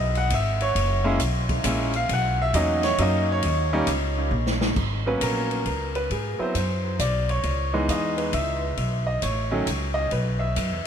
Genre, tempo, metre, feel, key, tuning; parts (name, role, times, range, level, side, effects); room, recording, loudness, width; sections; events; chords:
jazz piano trio; 134 BPM; 3/4; swing 66% on 8ths; G# minor; A4 = 439 Hz
clear baby grand piano; melody; 0.0-10.9 s; D#3 to F#5; -25 LUFS; right 1 dB; analog delay
upright bass; bass; 0.0-10.9 s; F#1 to G#2; -26 LUFS; equal
open jazz drum kit; drums; 0.2-10.7 s; crash cymbal, hi-hat, kick drum, ride cymbal, snare drum; -30 LUFS; left 2 dB
moderate huge ambient reverb, RT60 4.7 s; dreamy mix soaked in reverb; -22 LUFS; side -8 dB against mid
0.0-4.8 A section; 4.8-10.9 B section
grand piano solo 0.0-4.8; drum fill 4.3-4.8
0.0 C#m7 (rootless); 0.8 F#7; 2.1 Bmaj7; 3.4 D#7(no3); 4.8 G#m11; 6.1 G#7#9; 7.4 C#m9; 8.8 B9; 10.1 Esus2